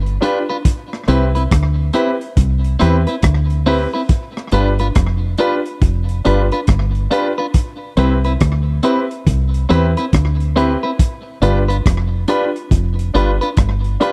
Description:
roots reggae; 70 BPM; 4/4; swing 63% on 16ths; G mixolydian; A4 = 441 Hz
deep dub fingered electric bass; bass; 0.0-14.0 s; F1 to E2; -18 LUFS; equal
crunchy breakbeat drum kit; drums; 0.1-14.1 s; hi-hat, kick drum, rim click; -17 LUFS; equal; slapback echo
clean electric guitar; accompaniment; 0.2-14.1 s; C4 to B4; -24 LUFS; equal; spring reverb, tape echo
warm grand piano; stabs; 0.2-14.1 s; C4 to B4; -21 LUFS; equal
small room ambience; dry, close 1970s-style studio recording; -16 LUFS; mono
0.0-14.1 A section
0.0 G7; 0.6 Cmaj7; 4.1 G7; 7.5 Cmaj7; 11.0 G7

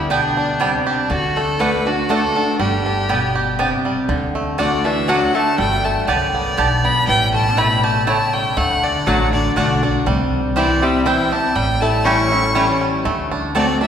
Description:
bluegrass; 120 BPM; 3/4; straight; G major; A4 = 436 Hz
clear fiddle; melody; 0.0-13.9 s; D4 to C#6; -21 LUFS; equal
picked steel-string acoustic guitar; accompaniment; 0.0-13.9 s; F#2 to F#4; -22 LUFS; left 1 dB
bluegrass banjo; arpeggios; 0.0-13.9 s; D3 to G4; -23 LUFS; right 3 dB
upright bass; bass; 0.0-13.9 s; G1 to D2; -24 LUFS; left 1 dB
mandolin; stabs; 0.1-13.6 s; A3 to A5; -23 LUFS; right 2 dB
lap resonator guitar; second line; 4.6-13.9 s; D3 to E4; -25 LUFS; left 2 dB
wet church reverb, RT60 3.0 s; recorded in a church or concert hall; -15 LUFS; side -8 dB against mid
0.0-4.1 A section; 4.1-13.9 B section
0.0 G; 1.1 D; 2.6 G; 4.1 D; 5.6 Gadd9; 7.1 A7; 8.6 D; 10.1 C; 11.6 A7; 13.1 D7

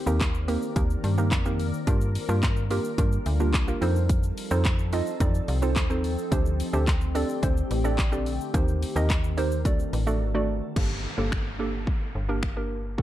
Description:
dance-pop; 108 BPM; 4/4; straight; G minor; A4 = 440 Hz
glassy FM pad; sustained chords; 0.0-10.8 s; D3 to D5; -34 LUFS; left 3 dB; ensemble chorus, built-in reverb, sidechain pumping
hollow square pluck; accompaniment; 0.1-13.0 s; A3 to Eb5; -30 LUFS; right 3 dB; chorus, sidechain pumping
slap-like FM bass; bass; 0.1-13.0 s; G1 to G2; -26 LUFS; equal; sidechain pumping
pop drum kit; drums; 0.1-13.0 s; crash cymbal, finger snaps, handclaps, hi-hat, kick drum, shaker; -27 LUFS; equal
downlifter; sound effects; 10.8-13.0 s; -38 LUFS; equal
digital ambience; dark, warm production; -23 LUFS; side -13 dB against mid
0.0-10.8 A section; 10.8-13.0 B section
silent gap 10.2-10.8
0.0 Cm7/Eb; 1.9 Gm7; 3.8 F7; 6.3 D7sus4; 8.5 Cm7/Eb; 9.7 D; 10.8 Gmadd9

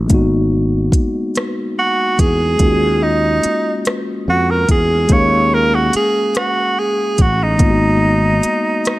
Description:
slow six-eight R&B; 48 BPM (dotted quarters); 6/8; straight; Eb minor; A4 = 440 Hz
mellow tine electric piano; accompaniment; 0.0-9.0 s; Ab3 to F5; -19 LUFS; left 2 dB
sustaining fretless electric bass; bass; 0.0-8.5 s; Ab1 to F2; -18 LUFS; equal
smooth R&B drum kit; drums; 0.1-9.0 s; hi-hat, kick drum, rim click; -16 LUFS; equal
clear tenor saxophone; melody; 1.8-9.0 s; Eb4 to Db5; -16 LUFS; right 2 dB
light reverb, digital ambience; -13 LUFS; side -18 dB against mid
0.0-9.0 A section
tenor saxophone solo 0.0-9.0
0.0 Abm9; 2.6 Ebm11; 7.6 Abm9

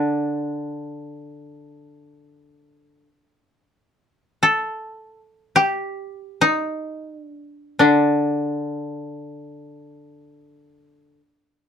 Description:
japanese traditional, Japanese chamber music; free time; A4 = 440 Hz
koto; melody; 0.0-10.6 s; D4 to A4; -20 LUFS; equal
koto; accompaniment; 0.0-3.1, 7.8-11.2 s; D3; -22 LUFS; left 2 dB
light reverb; -19 LUFS; side -8 dB against mid
0.0-11.7 A section

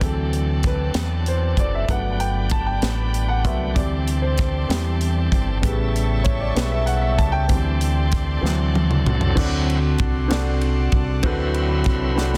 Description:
slow gospel; 64 BPM (dotted quarters); 6/8; straight; A4 = 440 Hz
warm upright piano; accompaniment; 0.0-12.4 s; C#3 to A5; -27 LUFS; equal
bright tonewheel organ; sustained chords; 0.0-12.4 s; C#3 to G5; -33 LUFS; equal; fast rotary speaker, overdrive
warm studio string section; sustained chords; 0.0-12.4 s; D5 to C#6; -36 LUFS; equal
deep dub fingered electric bass; bass; 0.0-12.4 s; F#1 to E2; -24 LUFS; equal
tight funk drum kit; drums; 0.0-12.4 s; crash cymbal, hi-hat, kick drum, ride cymbal, snare drum, toms; -26 LUFS; equal
studio reverb; dense, heavily limited modern master; -21 LUFS; mono
0.0-9.4 A section; 9.4-12.4 B section
upright piano solo 0.0-9.4; drum fill 8.4-9.4, 12.2; tonewheel organ solo 9.4-12.4
0.0 D7; 1.9 Gmaj7; 3.8 D7sus4; 5.6 A7; 7.5 D7sus4; 8.4 D7

